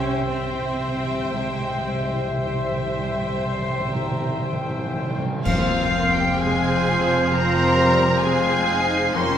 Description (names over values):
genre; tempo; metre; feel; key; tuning
classical, slow romantic movement for symphony orchestra; 54-66 BPM; 4/4; rubato; F minor; A4 = 440 Hz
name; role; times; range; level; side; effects
warm symphonic violin section; melody; 0.0-9.4 s; F5 to C6; -29 LUFS; left 1 dB; none
bright concert flute; second line; 0.0-9.4 s; E5 to C7; -29 LUFS; left 1 dB; none
warm clarinet; second line; 0.0-9.4 s; Bb4 to C5; -32 LUFS; equal; none
warm oboe; second line; 0.0-9.4 s; E5 to G5; -31 LUFS; right 1 dB; none
warm symphonic violin section; second line; 0.0-9.4 s; F4 to E5; -31 LUFS; left 1 dB; none
rich symphonic viola section; accompaniment; 0.0-9.4 s; F3 to C5; -28 LUFS; equal; none
dark French horn section; sustained chords; 0.0-9.4 s; F3 to E5; -30 LUFS; left 2 dB; none
concert harp; arpeggios; 0.0-9.4 s; C3 to C6; -32 LUFS; left 6 dB; none
dark studio double bass section; bass; 0.0-9.4 s; F1 to C2; -29 LUFS; right 3 dB; none
rich symphonic cello section; bass; 0.0-9.4 s; F2 to Db4; -29 LUFS; right 1 dB; none
timpani; percussion; 0.0-6.8 s; F2 to C3; -30 LUFS; right 1 dB; none
cymbal swell, clash cymbals and concert bass drum; percussion; 1.3-7.3 s; none; -33 LUFS; equal; none
dark trumpet; stabs; 5.5-9.4 s; Bb4 to C5; -26 LUFS; equal; none
room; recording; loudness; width
wet recital hall reverb, RT60 1.8 s; recorded in a church or concert hall; -19 LUFS; side -9 dB against mid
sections
0.0-5.5 A section; 5.5-9.4 B section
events
timpani fill 0.0-5.5; band accent 5.5-6.4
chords
0.0 C; 5.5 Fm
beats
0.28 | 1.32 2.40 3.42 4.44 | 5.45 6.40 7.32 8.24 | 9.16